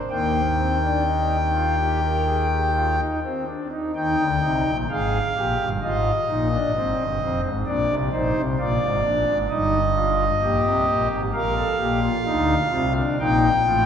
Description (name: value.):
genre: classical, baroque-style 3-part fugue for pipe organ.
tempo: 64 BPM.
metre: 4/4.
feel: uneven beats.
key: Eb major.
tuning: A4 = 441 Hz.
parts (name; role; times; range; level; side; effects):
pipe organ, foundations; solo; 0.1-13.9 s; F1 to G5; -19 LUFS; equal; none.
room: wet church reverb, RT60 3.5 s.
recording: recorded in a church or concert hall.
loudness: -20 LUFS.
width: side -8 dB against mid.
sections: 0.0-3.9 A section; 3.9-13.9 B section.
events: none.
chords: 0.1 Eb; 5.8 Fm7/Ab; 7.7 Bb7; 9.5 Eb/G; 11.3 Bb; 13.2 Cm7 (rootless).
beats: | 0.11 1.07 2.03 2.99 | 3.95 4.89 5.82 6.74 | 7.66 8.59 9.51 10.43 | 11.34 12.27 13.20.